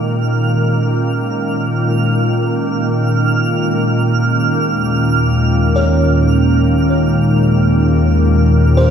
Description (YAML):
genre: ambient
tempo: free time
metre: none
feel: none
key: unclear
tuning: A4 = 439 Hz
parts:
  - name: warm analog pad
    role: sustained chords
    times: 0.0-8.9 s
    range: Eb2 to F4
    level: -13 LUFS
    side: equal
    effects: lush chorus
  - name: buzzing kalimba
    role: arpeggios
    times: 0.0-8.9 s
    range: Bb4 to Eb5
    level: -24 LUFS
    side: left 1 dB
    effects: analog delay
  - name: organ-like drone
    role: drone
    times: 0.0-8.9 s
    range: Eb3 to Bb3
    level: -20 LUFS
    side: left 1 dB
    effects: ensemble chorus, built-in reverb
  - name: twinkling granular texture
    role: texture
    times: 0.0-8.9 s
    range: F6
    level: -23 LUFS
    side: right 5 dB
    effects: built-in reverb, lush chorus
room: wet lush hall reverb, RT60 2.7 s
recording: dreamy mix soaked in reverb, cassette tape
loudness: -12 LUFS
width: side -8 dB against mid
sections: 0.0-8.9 A section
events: none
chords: 0.0 Eb5; 4.7 Bbm/Eb